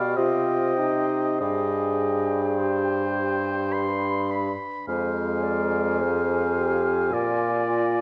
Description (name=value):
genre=classical, slow romantic movement for wind quintet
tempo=46-56 BPM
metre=3/4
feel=rubato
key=C minor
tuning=A4 = 440 Hz
part: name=mellow silver concert flute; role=melody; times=0.0-8.0 s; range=F5 to B5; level=-36 LUFS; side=equal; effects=none
part: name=warm oboe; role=second line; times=0.0-8.0 s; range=C5 to C6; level=-32 LUFS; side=equal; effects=none
part: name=clear French horn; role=accompaniment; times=0.0-8.0 s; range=Ab3 to Ab4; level=-30 LUFS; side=equal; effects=none
part: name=mellow clarinet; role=accompaniment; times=0.0-8.0 s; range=Bb4 to D5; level=-36 LUFS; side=equal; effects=none
part: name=warm bassoon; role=bass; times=0.0-8.0 s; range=F2 to C3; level=-28 LUFS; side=equal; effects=none
room=wet concert hall reverb, RT60 2.3 s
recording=dark, warm production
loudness=-24 LUFS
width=mono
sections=0.0-8.0 A section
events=none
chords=0.2 Cm; 1.4 Cm/G; 3.7 G; 4.9 Fm; 7.1 Bb7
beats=0.17 | 1.42 2.58 3.74 | 4.89 6.01 7.12